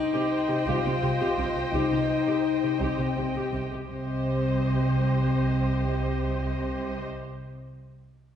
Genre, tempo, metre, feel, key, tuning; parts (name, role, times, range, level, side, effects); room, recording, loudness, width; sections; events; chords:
cinematic; 56 BPM (dotted quarters); 6/8; straight; C minor; A4 = 442 Hz
warm symphonic violin section; second line; 0.0-7.1 s; C5 to G5; -36 LUFS; left 2 dB
warm symphonic viola section; accompaniment; 0.0-7.1 s; G4 to C5; -33 LUFS; right 2 dB
mellow French horn section; sustained chords; 0.0-7.0 s; C4 to F4; -28 LUFS; left 4 dB
rich symphonic cello section; bass; 0.1-7.1 s; C3; -29 LUFS; right 1 dB
warm symphonic double bass section; bass; 0.7-7.0 s; C2; -33 LUFS; right 2 dB
wet scoring stage reverb, RT60 1.7 s; heard from further back in the room, nothing above 10.9 kHz; -24 LUFS; side -9 dB against mid
0.0-3.9 A section; 3.9-8.2 B section
0.0 Cm